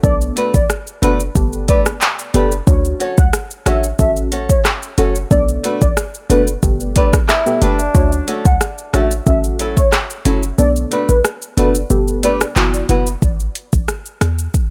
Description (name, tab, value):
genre	dancehall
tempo	91 BPM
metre	4/4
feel	straight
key	unclear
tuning	A4 = 437 Hz
part	warm velvety synth lead	melody	0.0-12.4 s	B4 to F#5	-23 LUFS	equal	chorus, tape echo
part	deep mellow chord stab	accompaniment	0.0-13.0 s	B3 to C#5	-23 LUFS	equal	chorus, phaser, sidechain pumping
part	short 808-style bass	bass	0.0-14.5 s	F#1 to E2	-20 LUFS	equal	none
part	afro-pop drum kit	drums	0.0-14.7 s	handclaps, hi-hat, kick drum, rim click, shaker	-18 LUFS	equal	none
part	flamenco guitar	arpeggios	0.4-13.1 s	F#3 to C#5	-22 LUFS	equal	none
part	mellow bassoon	second line	7.3-8.3 s	D4 to E4	-23 LUFS	equal	tape echo
room	little or no reverb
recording	none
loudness	-16 LUFS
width	mono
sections	0.0-13.2 A section; 13.2-14.7 B section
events	kick muted 10.6-13.2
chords	0.0 Bm7; 1.4 Gadd9; 2.7 Dmaj7; 4.0 A6; 5.3 Bm7; 6.6 Gadd9; 7.9 Dmaj7; 9.3 A6; 10.6 Bm7; 11.9 Gadd9; 12.6 F#7sus4; 13.2 A5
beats	| 0.04 0.69 1.35 2.01 | 2.67 3.33 3.99 4.65 | 5.31 5.97 6.63 7.29 | 7.95 8.61 9.27 9.93 | 10.59 11.24 11.90 12.56 | 13.22 13.88 14.54